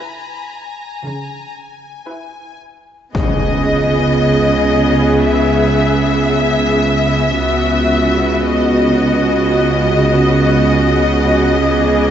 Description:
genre	cinematic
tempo	57 BPM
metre	4/4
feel	straight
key	C# minor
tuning	A4 = 440 Hz
part	rich symphonic viola section	accompaniment	0.0-12.1 s	B3 to B4	-17 LUFS	equal	none
part	clear symphonic violin section	texture	0.0-2.6, 11.6-12.1 s	G#5 to D6	-29 LUFS	left 4 dB	none
part	rich symphonic cello section	bass	1.0-12.1 s	C#3	-18 LUFS	right 2 dB	none
part	rich symphonic double bass section	bass	3.1-12.1 s	C#2	-17 LUFS	right 2 dB	none
part	impact	sound effects	3.1-7.4 s	none	-21 LUFS	left 2 dB	none
part	warm symphonic violin section	melody	3.2-12.1 s	D#5 to E5	-17 LUFS	left 3 dB	none
room	wet scoring stage reverb, RT60 2.1 s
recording	nothing above 7.8 kHz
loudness	-11 LUFS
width	side -9 dB against mid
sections	0.0-3.1 A section; 3.1-12.1 B section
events	impact 3.1-7.4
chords	0.0 C#m; 3.1 G#m/C#; 7.4 B/C#; 11.6 G#m/C#

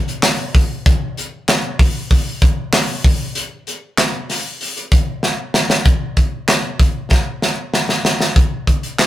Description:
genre	pop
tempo	96 BPM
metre	4/4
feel	straight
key	none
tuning	none
part	modern studio drum kit	drums	0.1-9.1 s	handclaps, hi-hat, kick drum, snare drum	-14 LUFS	equal	none
room	moderate studio reverb, RT60 0.7 s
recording	rough rehearsal-room recording, warm saturation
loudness	-14 LUFS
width	side -14 dB against mid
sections	0.0-5.9 A section; 5.9-8.4 B section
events	drum fill 5.2-5.9, 7.1-8.4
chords	none

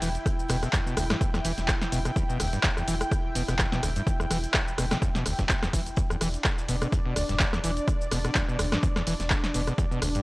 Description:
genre	acid house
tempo	126 BPM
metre	4/4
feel	swing 55% on 16ths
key	E minor pentatonic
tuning	A4 = 440 Hz
part	lush unison pad	sustained chords	0.0-10.2 s	D4 to G5	-34 LUFS	equal	chorus, sidechain pumping
part	overdriven acid bass	riff	0.0-10.2 s	D2 to E3	-32 LUFS	equal	distortion, wide subtle chorus, vintage 12-bit sampler grit, sidechain pumping, tape echo
part	round analog bass	bass	0.0-10.2 s	E1	-32 LUFS	equal	sidechain pumping
part	jazz brush drum kit	drums	0.0-10.1 s	hi-hat, snare drum	-44 LUFS	right 1 dB	none
part	punchy analog drum machine	drums	0.0-10.2 s	handclaps, hi-hat, ride cymbal, rim click, shaker, snare drum	-29 LUFS	equal	overdrive, studio ambience
part	electronic kick drum	drums	0.3-9.9 s	none	-27 LUFS	equal	overdrive, studio ambience
room	light reverb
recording	dry, gritty hardware recording, cassette tape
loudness	-24 LUFS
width	side -21 dB against mid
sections	0.0-10.2 A section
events	none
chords	0.0 Em

